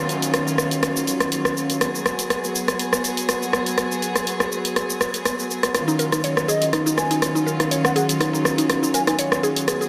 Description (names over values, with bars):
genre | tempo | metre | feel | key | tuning
afro house | 122 BPM | 4/4 | swing 54% on 16ths | Eb minor | A4 = 440 Hz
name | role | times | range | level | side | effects
rich chamber string section | sustained chords | 0.0-9.9 s | Eb3 to Ab4 | -27 LUFS | equal | none
downlifter | sound effects | 0.0-1.8 s | none | -38 LUFS | equal | none
deep house drum kit | drums | 0.1-9.9 s | hi-hat, rim click, shaker | -24 LUFS | equal | soft clipping on snare
mallet-like synth pluck | arpeggios | 5.9-9.9 s | Eb4 to Db5 | -26 LUFS | equal | chorus, delay
breathy bass bansuri | melody | 6.5-9.1 s | Eb5 to Ab5 | -29 LUFS | equal | delay
room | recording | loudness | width
wet lush hall reverb, RT60 1.7 s, digital ambience | dense, heavily limited modern master | -21 LUFS | mono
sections
0.0-9.9 A section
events
none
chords
0.0 Ebm9; 1.8 Abm7; 5.7 Ebm9